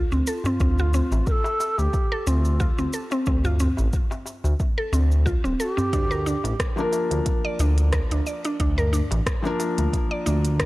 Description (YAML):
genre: organic downtempo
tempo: 90 BPM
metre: 4/4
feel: swing 55% on 16ths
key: D minor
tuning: A4 = 440 Hz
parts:
  - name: mallet-like synth pluck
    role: arpeggios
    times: 0.0-10.7 s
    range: C4 to D5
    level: -28 LUFS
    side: equal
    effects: chorus, tape echo
  - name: smooth synth bass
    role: bass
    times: 0.1-10.7 s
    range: D1 to D2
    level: -22 LUFS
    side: equal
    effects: sidechain pumping
  - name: organic electronic drum kit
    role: drums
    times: 0.1-10.7 s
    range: hi-hat, rim click, shaker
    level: -32 LUFS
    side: equal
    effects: none
  - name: breathy mellow low ney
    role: melody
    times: 0.3-6.6 s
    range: F4 to Bb4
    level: -29 LUFS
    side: equal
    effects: tape echo
  - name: darbuka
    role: percussion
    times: 0.4-10.4 s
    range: none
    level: -33 LUFS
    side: equal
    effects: none
  - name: electronic kick drum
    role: drums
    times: 0.6-10.7 s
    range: none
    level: -25 LUFS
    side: equal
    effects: none
  - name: felt-muted upright piano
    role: accompaniment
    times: 6.8-10.7 s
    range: F3 to Bb4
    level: -27 LUFS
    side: left 2 dB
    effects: sidechain pumping, tape echo
room: little or no reverb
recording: dry, gritty hardware recording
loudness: -20 LUFS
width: side -18 dB against mid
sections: 0.0-10.7 A section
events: none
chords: 0.0 Dm7; 5.9 Bb